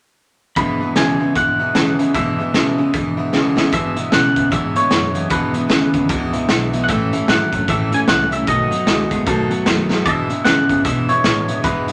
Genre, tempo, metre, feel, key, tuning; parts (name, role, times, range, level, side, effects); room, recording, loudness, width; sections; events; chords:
rockabilly; 152 BPM; 4/4; swing 61% on 8ths; E major; A4 = 441 Hz
twangy electric guitar; melody; 0.6-11.9 s; B4 to B5; -22 LUFS; equal
picked steel-string acoustic guitar; accompaniment; 0.6-11.9 s; E2 to F#4; -25 LUFS; equal
electric guitar at the edge of break-up; riff; 0.6-11.9 s; E2 to G#3; -23 LUFS; equal; warbly pitch drift
raw garage drum kit; drums; 0.6-11.9 s; hi-hat, kick drum, snare drum; -22 LUFS; equal
upright bass; bass; 3.7-11.9 s; G#1 to B2; -29 LUFS; equal
light reverb; -17 LUFS; mono
0.6-3.7 A section; 3.7-11.9 B section
drum fill 3.3-3.7, 9.9
0.6 E; 6.9 A; 8.5 B7; 10.1 E